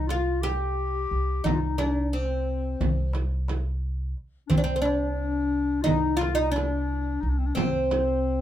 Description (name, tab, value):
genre	Turkish makam ensemble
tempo	177 BPM (eighths)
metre	9/8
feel	straight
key	C makam huseyni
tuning	A4 = 440 Hz
part	oud	melody	0.0-8.4 s	C4 to G4	-28 LUFS	right 1 dB	none
part	warm clarinet	second line	0.0-8.4 s	C4 to G4	-30 LUFS	left 6 dB	none
part	upright bass	bass	0.0-8.4 s	C2	-28 LUFS	equal	none
part	darbuka	percussion	0.1-8.1 s	none	-30 LUFS	left 3 dB	none
part	frame drum	percussion	0.1-8.1 s	none	-31 LUFS	right 6 dB	none
room	light reverb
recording	minimal, uncompressed stereo recording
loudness	-24 LUFS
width	side -11 dB against mid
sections	0.0-8.4 A section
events	none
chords	none